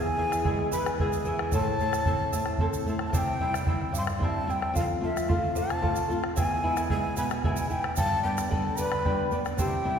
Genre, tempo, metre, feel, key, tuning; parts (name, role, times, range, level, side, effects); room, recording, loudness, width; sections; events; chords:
andean folk, Andean ensemble; 74 BPM (dotted quarters); 6/8; straight; A4 = 438 Hz
breathy large quena; melody; 0.0-10.0 s; E5 to C6; -31 LUFS; left 1 dB
mellow hollow polished pan flute; second line; 0.0-2.9, 8.5-10.0 s; G4 to B4; -33 LUFS; equal
charango; accompaniment; 0.0-10.0 s; E4 to C6; -34 LUFS; equal
flamenco guitar; accompaniment; 0.0-10.0 s; E2 to F4; -31 LUFS; left 1 dB
bombo; percussion; 0.1-9.8 s; -30 LUFS; right 1 dB
egg shaker; percussion; 0.3-9.7 s; -43 LUFS; right 6 dB
wet concert hall reverb, RT60 1.9 s; heard from further back in the room; -25 LUFS; side -7 dB against mid
0.0-3.1 A section; 3.1-10.0 A section
0.0 E; 1.5 Am; 3.1 C; 4.8 F; 6.4 E; 8.0 G